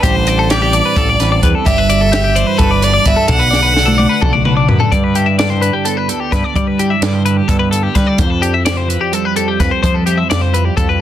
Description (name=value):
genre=math rock and midwest emo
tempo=257 BPM (eighths)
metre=7/8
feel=straight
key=G major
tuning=A4 = 440 Hz
part: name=clear fiddle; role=melody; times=0.0-4.2 s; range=B4 to F#5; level=-16 LUFS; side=right 1 dB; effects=tape echo
part: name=twelve-string electric guitar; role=accompaniment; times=0.0-11.0 s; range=D2 to F#4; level=-20 LUFS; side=right 9 dB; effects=none
part: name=twelve-string electric guitar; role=arpeggios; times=0.0-11.0 s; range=G4 to E5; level=-17 LUFS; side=left 6 dB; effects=tape echo
part: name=growling picked electric bass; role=bass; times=0.0-11.0 s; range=G1 to G3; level=-16 LUFS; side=equal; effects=overdrive
part: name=compact cocktail drum kit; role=drums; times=0.0-10.9 s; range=hi-hat, kick drum, snare drum, toms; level=-16 LUFS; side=equal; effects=none
room=little or no reverb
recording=dense, heavily limited modern master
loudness=-11 LUFS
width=side -11 dB against mid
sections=0.0-4.9 A section; 4.9-11.0 B section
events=drum fill 3.5-4.9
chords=0.0 Am11; 1.7 Em9/G; 3.3 Bm7; 4.9 G6; 8.2 Fmaj9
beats=| 0.03 0.26 0.49 0.73 0.96 1.19 1.43 | 1.66 1.89 2.12 2.36 2.59 2.82 3.06 | 3.29 3.52 3.75 3.99 4.22 4.45 4.69 | 4.92 5.15 5.39 5.62 5.85 6.09 6.32 | 6.55 6.79 7.02 7.25 7.49 7.72 7.96 | 8.19 8.42 8.66 8.89 9.12 9.36 9.59 | 9.83 10.06 10.29 10.53 10.76 11.00